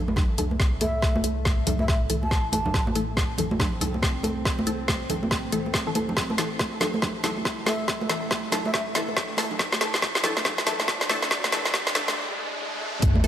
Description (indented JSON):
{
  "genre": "deep dubstep",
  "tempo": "140 BPM",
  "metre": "4/4",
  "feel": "swing 61% on 16ths, half-time",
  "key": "A minor",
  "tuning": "A4 = 437 Hz",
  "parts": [
    { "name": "bowed-like drone", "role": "sustained chords", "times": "0.0-13.3 s", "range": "A2 to D4", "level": "-36 LUFS", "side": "equal", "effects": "built-in reverb" },
    { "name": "filtered dub chord stab", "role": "stabs", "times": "0.0-13.3 s", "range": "E3 to A4", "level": "-32 LUFS", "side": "left 2 dB", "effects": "phaser, dub echo" },
    { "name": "soft dub sub bass", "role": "bass", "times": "0.0-13.3 s", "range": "G1 to C2", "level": "-32 LUFS", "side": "equal", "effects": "none" },
    { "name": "congas", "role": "percussion", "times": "0.1-13.2 s", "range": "none", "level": "-31 LUFS", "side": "right 2 dB", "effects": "dub echo" },
    { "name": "deep house drum kit", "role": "drums", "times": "0.2-13.3 s", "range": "hi-hat, snare drum", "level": "-26 LUFS", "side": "equal", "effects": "none" },
    { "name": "electronic kick drum", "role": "drums", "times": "0.2-13.1 s", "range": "none", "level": "-26 LUFS", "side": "equal", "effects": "none" },
    { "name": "breathy mellow long shakuhachi", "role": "melody", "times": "0.8-2.9, 7.7-8.8 s", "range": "E5 to A5", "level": "-32 LUFS", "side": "equal", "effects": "dub echo" },
    { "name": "riser and sub drop", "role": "sound effects", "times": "8.5-13.3 s", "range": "none", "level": "-32 LUFS", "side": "equal", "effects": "none" }
  ],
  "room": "moderate lush hall reverb, RT60 2.1 s",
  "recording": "high-pass filter",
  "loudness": "-22 LUFS",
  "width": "side -10 dB against mid",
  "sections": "0.0-13.0 A section",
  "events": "build-up 0.0-13.0; drum fill 0.0-12.2; filter sweep on synth stab 0.0-13.0; filter sweep 0.0-13.0; break 12.2-13.0; impact 13.0",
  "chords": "0.0 A5"
}